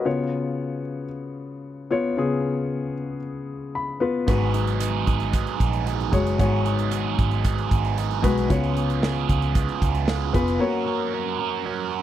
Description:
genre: piano-driven pop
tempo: 114 BPM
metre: 4/4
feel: straight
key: unclear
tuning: A4 = 440 Hz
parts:
  - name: warm concert grand piano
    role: accompaniment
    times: 0.0-12.0 s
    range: G#2 to B5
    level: -25 LUFS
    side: left 3 dB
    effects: none
  - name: biting overdriven guitar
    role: riff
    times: 4.3-12.0 s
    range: G#2 to A#4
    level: -27 LUFS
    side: right 12 dB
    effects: phaser
  - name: vintage muted picked electric bass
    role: bass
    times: 4.3-10.6 s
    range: E#1 to C#2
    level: -26 LUFS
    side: right 1 dB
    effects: none
  - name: modern studio drum kit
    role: drums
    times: 4.3-10.6 s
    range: hi-hat, kick drum, snare drum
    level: -24 LUFS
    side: right 1 dB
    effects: none
room: little or no reverb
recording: dry, close 1970s-style studio recording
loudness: -21 LUFS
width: side -11 dB against mid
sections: 0.0-12.0 A section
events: grand piano fill 3.5-4.3; break 10.6-12.0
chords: 0.1 C#7; 4.3 G#m7; 8.5 C#7; 10.6 F#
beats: | 0.06 0.58 1.11 1.64 | 2.17 2.70 3.23 3.75 | 4.28 4.81 5.34 5.87 | 6.39 6.92 7.45 7.97 | 8.50 9.03 9.56 10.08 | 10.61 11.14 11.66

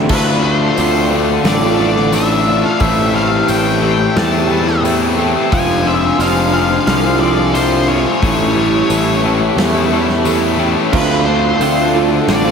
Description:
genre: rock, shoegaze and dream pop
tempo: 89 BPM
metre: 4/4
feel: straight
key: unclear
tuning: A4 = 438 Hz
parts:
  - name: dark analog pad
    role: sustained chords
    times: 0.0-12.5 s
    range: D4 to C#6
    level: -20 LUFS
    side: right 1 dB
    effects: chorus
  - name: fingerpicked twelve-string acoustic guitar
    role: arpeggios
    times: 0.0-12.5 s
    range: E3 to Ab4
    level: -22 LUFS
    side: right 8 dB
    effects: analog chorus, analog delay
  - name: biting overdriven guitar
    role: riff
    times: 0.0-12.5 s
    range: A2 to F4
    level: -19 LUFS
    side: left 9 dB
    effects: lush chorus
  - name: direct-recorded clean electric guitar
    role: riff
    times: 0.0-0.1, 10.9-12.5 s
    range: D3 to F4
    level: -19 LUFS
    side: right 7 dB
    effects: reverse reverb
  - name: fuzz picked electric bass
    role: bass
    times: 0.0-12.5 s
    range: F1 to E2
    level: -18 LUFS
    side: equal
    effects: overdrive
  - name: octave-fuzz lead guitar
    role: melody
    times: 0.1-12.5 s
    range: B4 to A5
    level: -20 LUFS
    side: left 2 dB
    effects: distortion, analog delay
  - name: biting overdriven guitar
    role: riff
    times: 0.1-12.5 s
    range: F2 to D4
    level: -20 LUFS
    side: left 1 dB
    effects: none
  - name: big rock drum kit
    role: drums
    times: 0.1-12.4 s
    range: crash cymbal, hi-hat, kick drum, snare drum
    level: -22 LUFS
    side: right 1 dB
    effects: none
  - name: tambourine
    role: percussion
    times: 0.8-11.8 s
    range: none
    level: -32 LUFS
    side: right 9 dB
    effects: none
room: wet plate reverb, RT60 1.9 s, small room ambience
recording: dreamy mix soaked in reverb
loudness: -11 LUFS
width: side -6 dB against mid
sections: 0.1-12.5 A section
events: none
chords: 0.1 Dm7; 2.8 Am7; 5.5 Fm6; 8.2 A7; 10.9 Dm7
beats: | 0.10 0.77 1.45 2.13 | 2.81 3.49 4.16 4.84 | 5.52 6.20 6.87 7.55 | 8.23 8.90 9.58 10.26 | 10.93 11.61 12.28

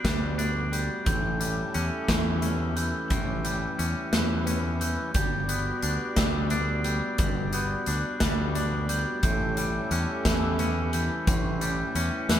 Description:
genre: post-rock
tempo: 59 BPM (dotted quarters)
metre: 6/8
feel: straight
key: unclear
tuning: A4 = 440 Hz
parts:
  - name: hand-pumped harmonium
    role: sustained chords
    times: 0.0-12.4 s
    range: B3 to E5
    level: -34 LUFS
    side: right 2 dB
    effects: none
  - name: glockenspiel with rubber mallets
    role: arpeggios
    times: 0.0-12.4 s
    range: E6 to G6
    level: -34 LUFS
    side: right 1 dB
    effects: none
  - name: twangy electric guitar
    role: arpeggios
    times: 0.0-12.4 s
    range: A2 to D4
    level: -32 LUFS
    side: left 3 dB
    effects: none
  - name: growling fingered electric bass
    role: bass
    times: 0.0-12.4 s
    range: G1 to E2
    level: -30 LUFS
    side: equal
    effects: overdrive
  - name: big rock drum kit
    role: drums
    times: 0.0-12.4 s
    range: hi-hat, kick drum, snare drum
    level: -28 LUFS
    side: equal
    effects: none
room: moderate studio reverb, RT60 0.6 s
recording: band playing live in one room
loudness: -24 LUFS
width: side -10 dB against mid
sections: 0.0-12.4 A section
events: none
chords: 0.0 Gmaj7; 1.1 A7; 5.1 Gmaj7; 9.2 A7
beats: 0.05 | 1.07 2.09 | 3.11 4.13 | 5.15 6.17 | 7.19 8.21 | 9.23 10.25 | 11.28 12.30

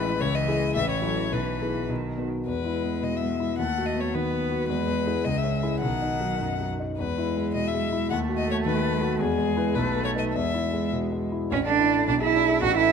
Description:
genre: quick classical-period movement for piano trio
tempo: 102-111 BPM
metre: 2/4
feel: rubato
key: E major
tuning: A4 = 441 Hz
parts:
  - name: rich violin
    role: melody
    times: 0.0-12.9 s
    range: G#4 to F#5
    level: -30 LUFS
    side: left 7 dB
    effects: none
  - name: rich cello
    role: second line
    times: 0.0-12.9 s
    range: D#3 to F#4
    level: -27 LUFS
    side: right 9 dB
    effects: none
  - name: warm concert grand piano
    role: accompaniment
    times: 0.0-12.9 s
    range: A1 to B4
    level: -26 LUFS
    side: left 2 dB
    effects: none
room: light reverb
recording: close, detailed microphones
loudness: -23 LUFS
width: side -6 dB against mid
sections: 0.0-2.5 A section; 2.5-11.5 B section; 11.5-12.9 A section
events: none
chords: 0.2 C#m; 0.8 F#m7/A; 1.3 E/B; 1.9 B; 2.5 E; 3.6 B7/D#; 4.7 E; 5.2 C#m; 5.8 B; 7.0 E; 8.1 B7/D#; 9.2 E; 9.8 B7; 10.3 E; 11.5 A5; 12.1 G#dim/B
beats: | 0.20 0.76 | 1.32 1.90 | 2.48 3.04 | 3.60 4.14 | 4.69 5.25 | 5.82 6.40 | 6.99 7.55 | 8.11 8.66 | 9.21 9.76 | 10.34 10.93 | 11.51 12.07 | 12.62

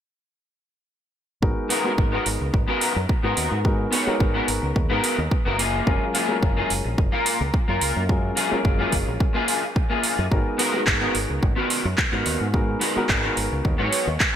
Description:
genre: nu-disco, nu disco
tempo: 108 BPM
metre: 4/4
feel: swing 54% on 16ths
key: G# dorian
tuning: A4 = 440 Hz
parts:
  - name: warm grand piano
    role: accompaniment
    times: 1.4-14.4 s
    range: F#3 to A#4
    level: -28 LUFS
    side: left 1 dB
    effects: digital delay
  - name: fingered electric bass with an envelope filter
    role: bass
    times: 1.4-14.2 s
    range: F#1 to G#2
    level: -27 LUFS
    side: equal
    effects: none
  - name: electronic kick drum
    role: drums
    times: 1.4-14.3 s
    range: none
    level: -22 LUFS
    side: equal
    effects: studio reverb
  - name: electric guitar at the edge of break-up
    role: riff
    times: 1.7-14.1 s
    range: A#3 to C#5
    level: -24 LUFS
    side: left 1 dB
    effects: analog chorus, digital delay
  - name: house drum kit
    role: drums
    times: 1.7-14.3 s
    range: handclaps, hi-hat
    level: -25 LUFS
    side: right 2 dB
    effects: studio reverb, gated reverb
room: moderate lush hall reverb, RT60 2.0 s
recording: bright 1980s-style digital production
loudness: -20 LUFS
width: side -9 dB against mid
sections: 1.4-14.4 A section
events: none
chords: 1.4 G#m9; 5.6 F#maj9; 10.3 G#m9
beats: | 1.43 1.98 2.54 3.09 | 3.65 4.21 4.76 5.32 | 5.87 6.43 6.98 7.54 | 8.09 8.65 9.21 9.76 | 10.32 10.87 11.43 11.98 | 12.54 13.09 13.65 14.21

